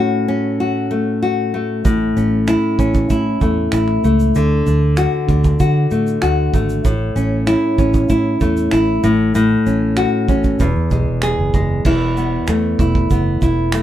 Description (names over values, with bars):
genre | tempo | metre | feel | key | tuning
acoustic pop | 96 BPM | 4/4 | straight | A major | A4 = 440 Hz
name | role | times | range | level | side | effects
nylon-string guitar | accompaniment | 0.0-13.8 s | E2 to G#4 | -16 LUFS | left 1 dB | none
vintage muted fingered electric bass | bass | 1.9-13.8 s | E1 to D3 | -19 LUFS | right 1 dB | none
cloth-damped thuddy drum kit | drums | 1.9-13.8 s | crash cymbal, finger snaps, kick drum, shaker | -20 LUFS | right 2 dB | none
room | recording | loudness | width
light reverb | band playing live in one room | -14 LUFS | side -12 dB against mid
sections
0.0-11.9 A section; 11.9-13.8 B section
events
none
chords
0.0 F#m/A; 1.9 A; 4.3 D; 6.8 A; 9.0 F#m/A; 10.6 E; 11.9 Esus4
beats
0.60 1.23 | 1.85 2.48 3.10 3.73 | 4.35 4.97 5.60 6.22 | 6.85 7.48 8.10 8.73 | 9.35 9.98 10.60 11.23 | 11.86 12.48 13.11 13.73